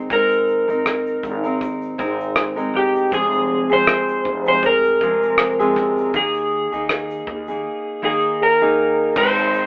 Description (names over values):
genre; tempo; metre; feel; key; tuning
acoustic pop; 80 BPM; 4/4; swing 55% on 16ths; Ab major; A4 = 437 Hz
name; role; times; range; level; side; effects
picked steel-string acoustic guitar; accompaniment; 0.0-9.7 s; F2 to Bb4; -22 LUFS; equal; none
upright bass; bass; 0.0-9.7 s; F1 to Eb2; -31 LUFS; equal; none
electric slide guitar; melody; 0.1-9.7 s; G4 to C5; -17 LUFS; equal; none
cloth-damped thuddy drum kit; drums; 0.1-9.7 s; crash cymbal, kick drum, rim click, shaker; -21 LUFS; equal; none
tube shaker; percussion; 9.2-9.7 s; none; -56 LUFS; equal; none
room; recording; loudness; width
moderate studio reverb, RT60 0.6 s; band playing live in one room, telephone sound; -16 LUFS; side -37 dB against mid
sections
0.0-9.2 A section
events
none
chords
0.0 Abadd9; 3.1 Fm; 6.1 Ebsus4; 9.2 Abadd9